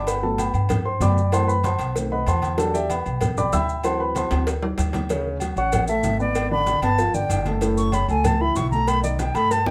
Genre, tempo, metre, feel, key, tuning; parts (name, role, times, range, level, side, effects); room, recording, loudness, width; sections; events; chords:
Afro-Cuban jazz; 191 BPM; 4/4; straight; D major from 5.1 s; A4 = 444 Hz
dark baby grand piano; accompaniment; 0.0-9.7 s; A2 to E6; -26 LUFS; equal
upright bass; bass; 0.0-9.7 s; F#1 to G2; -27 LUFS; equal
agogo bells and timbales; percussion; 0.1-9.7 s; -33 LUFS; equal
congas; percussion; 0.1-9.7 s; -32 LUFS; equal
cowbell and bongos; percussion; 0.1-9.7 s; -33 LUFS; equal
maracas; percussion; 0.1-9.7 s; -41 LUFS; equal
silver concert flute; melody; 5.6-9.7 s; D5 to C#6; -25 LUFS; equal
moderate club reverb, RT60 0.8 s; -22 LUFS; mono
0.0-5.1 A section; 5.1-9.7 A section
grand piano solo 0.0-5.1; drum fill 4.3-5.1; flute solo 5.1-9.7
0.1 Gmaj7; 1.3 F#m7b5; 2.0 B7b9; 2.6 Em9; 3.8 D7; 5.1 Dmaj7; 6.4 G#dim; 7.0 Gsus2; 7.6 F#m7; 8.9 Baug7